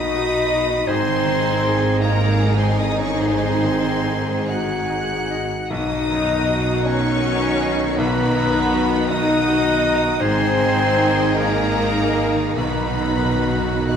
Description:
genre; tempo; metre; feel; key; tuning
cinematic, emotional film score for orchestra; 44-55 BPM (dotted quarters); 6/8; rubato; B major; A4 = 440 Hz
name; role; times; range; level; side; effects
rich symphonic violin section; melody; 0.0-14.0 s; A#5 to F#6; -28 LUFS; left 2 dB; none
bright clarinet; second line; 0.0-14.0 s; D#4 to F#4; -28 LUFS; equal; none
clear oboe; second line; 0.0-14.0 s; F#5 to B5; -30 LUFS; right 2 dB; none
hollow concert flute; second line; 0.0-14.0 s; A#4 to B5; -27 LUFS; left 1 dB; none
warm symphonic violin section; second line; 0.0-14.0 s; D#4 to G#4; -29 LUFS; left 2 dB; none
bright baby grand piano; accompaniment; 0.0-14.0 s; B1 to D#5; -28 LUFS; equal; none
warm symphonic viola section; accompaniment; 0.0-14.0 s; D#3 to D#4; -27 LUFS; right 3 dB; none
warm French horn section; sustained chords; 0.0-14.0 s; A#3 to F#4; -24 LUFS; left 2 dB; none
concert harp; arpeggios; 0.0-14.0 s; G#2 to G#5; -30 LUFS; left 8 dB; none
clear symphonic cello section; bass; 0.0-14.0 s; G#2 to B2; -25 LUFS; right 2 dB; none
warm symphonic double bass section; bass; 0.0-14.0 s; G#1 to B1; -28 LUFS; right 3 dB; none
timpani; percussion; 5.7-6.8, 12.6-14.0 s; B2; -31 LUFS; left 1 dB; none
room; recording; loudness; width
wet scoring stage reverb, RT60 1.6 s; none; -17 LUFS; side -7 dB against mid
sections
0.0-14.0 A section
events
timpani fill 12.6-14.0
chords
0.0 B; 0.9 G#; 5.7 B; 10.2 G#; 12.6 B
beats
| 0.89 2.02 | 3.21 4.49 | 5.71 6.85 | 7.99 9.10 | 10.21 11.36 | 12.57 13.89

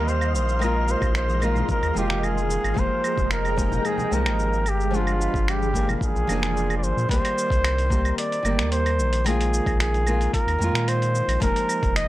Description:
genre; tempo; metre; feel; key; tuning
sunset chillout; 111 BPM; 4/4; straight; C minor; A4 = 440 Hz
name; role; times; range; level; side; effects
warm flugelhorn; melody; 0.0-12.1 s; F4 to Eb5; -26 LUFS; equal; analog delay
nylon-string guitar; accompaniment; 0.0-12.1 s; Eb3 to Ab4; -28 LUFS; moving between left 4 dB and right 4 dB; auto-pan
soft string machine; sustained chords; 0.0-7.1 s; Ab3 to C6; -32 LUFS; equal; phaser, ensemble chorus
warm sub bass; bass; 0.0-12.1 s; F1 to Bb2; -24 LUFS; equal; tube saturation
wind-like tuned noise texture; texture; 0.0-7.1 s; F5 to F6; -40 LUFS; right 2 dB; built-in reverb
dusty soul sampler-style drum kit; drums; 0.1-12.1 s; claves, finger snaps, hi-hat, shaker; -30 LUFS; right 1 dB; overdrive
bongos and congas; percussion; 0.9-6.9 s; none; -35 LUFS; left 2 dB; none
electronic kick drum; drums; 1.0-11.9 s; none; -26 LUFS; equal; overdrive
room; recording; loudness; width
digital ambience; dry, gritty hardware recording; -20 LUFS; side -16 dB against mid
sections
0.0-7.1 A section; 7.1-12.1 B section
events
none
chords
0.0 Cm7; 0.6 Bb9sus4; 2.8 Fm11; 4.7 G7b9; 6.0 Bb9; 7.1 Cm7; 9.3 Bb9sus4; 11.4 Fm11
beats
0.07 | 0.61 1.15 1.69 2.23 | 2.77 3.31 3.85 4.39 | 4.93 5.47 6.01 6.55 | 7.09 7.63 8.18 8.72 | 9.26 9.80 10.34 10.88 | 11.42 11.96

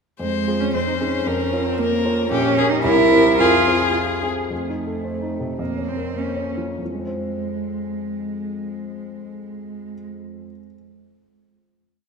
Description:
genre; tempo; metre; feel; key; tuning
quick classical-period movement for piano trio; 94-116 BPM; 2/4; rubato; F minor; A4 = 440 Hz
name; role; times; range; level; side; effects
rich violin; melody; 0.2-4.3 s; G4 to C5; -21 LUFS; left 5 dB; none
rich cello; second line; 0.2-10.0 s; Ab3 to F4; -22 LUFS; right 3 dB; none
warm grand piano; accompaniment; 0.2-10.7 s; Bb1 to C5; -26 LUFS; equal; none
room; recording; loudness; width
wet concert hall reverb, RT60 2.4 s; none; -18 LUFS; side -5 dB against mid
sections
0.2-4.5 A section; 4.5-6.8 coda; 6.8-9.3 final chord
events
slowing down 4.0-6.8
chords
0.2 Fm; 0.7 Ab/F; 1.3 Bbm/F; 2.3 Gdim/Bb; 2.8 C7; 3.4 Fm; 4.5 F7; 5.6 Bbm/F; 6.8 Fm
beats
| 0.20 0.74 | 1.26 1.79 | 2.31 2.84 | 3.40 3.96 | 4.51 5.05 | 5.59 6.17 | 6.80 7.42 | 8.04 8.66

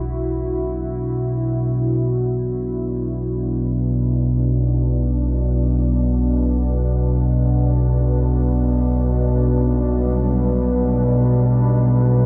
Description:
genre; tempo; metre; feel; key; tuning
dark ambient drone; free time; none; none; B minor; A4 = 440 Hz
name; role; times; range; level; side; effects
deep dark ambient pad; sustained chords; 0.0-12.3 s; B2 to B4; -27 LUFS; equal; chorus, built-in reverb
dark detuned synth bell; arpeggios; 0.0-8.0 s; none; barely audible; none; none
analog drone; drone; 0.0-12.3 s; B1 to B2; -20 LUFS; equal; chorus
room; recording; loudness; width
wet huge ambient reverb, RT60 7.5 s; dark, warm production; -19 LUFS; mono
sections
0.0-12.3 A section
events
none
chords
0.0 Bm; 7.9 Em7/B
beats
free time

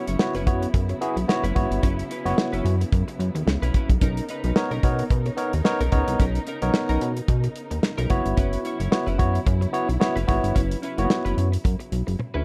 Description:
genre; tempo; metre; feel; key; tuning
early-eighties boogie funk; 110 BPM; 4/4; swing 56% on 16ths; unclear; A4 = 440 Hz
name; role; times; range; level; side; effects
barky tine electric piano; accompaniment; 0.0-11.5 s; A#3 to C#5; -28 LUFS; equal; overdrive
muted studio string section; sustained chords; 0.0-12.4 s; C#3 to A#4; -37 LUFS; equal; none
semi-hollow electric guitar; riff; 0.0-12.4 s; C#4 to C#5; -36 LUFS; equal; analog chorus
chorused synth bass; bass; 0.1-12.4 s; F#1 to B2; -26 LUFS; equal; none
damped 70s drum kit; drums; 0.1-12.3 s; hi-hat, kick drum, snare drum, toms; -26 LUFS; equal; none
room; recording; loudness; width
small room reverb; dark, warm production; -23 LUFS; mono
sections
0.0-12.4 A section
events
drum fill 12.2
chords
0.0 F#7sus4; 4.0 Bmaj9; 8.1 F#7sus4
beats
0.20 0.74 1.29 | 1.83 2.38 2.92 3.47 | 4.01 4.56 5.11 5.65 | 6.20 6.74 7.29 7.83 | 8.38 8.92 9.47 10.01 | 10.56 11.11 11.65 12.20

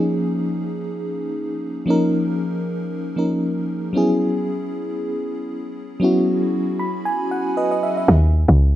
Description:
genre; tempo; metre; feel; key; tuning
amapiano; 116 BPM; 4/4; swing 55% on 16ths; Eb phrygian; A4 = 439 Hz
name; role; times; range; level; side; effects
FM electric piano with soft pad layer; accompaniment; 0.0-8.2 s; F3 to Cb6; -20 LUFS; equal; chorus, tremolo
woody log drum bass; bass; 8.1-8.8 s; Db2 to Eb2; -12 LUFS; equal; none
room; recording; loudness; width
light reverb, digital ambience; none; -19 LUFS; side -13 dB against mid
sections
0.0-8.1 A section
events
FM electric piano fill 6.5-8.1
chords
0.0 Eb9sus4; 3.9 Gb9sus4; 8.1 Dbmadd9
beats
0.33 0.84 1.36 | 1.88 2.39 2.91 3.43 | 3.95 4.46 4.98 5.50 | 6.01 6.53 7.05 7.57 | 8.08 8.60

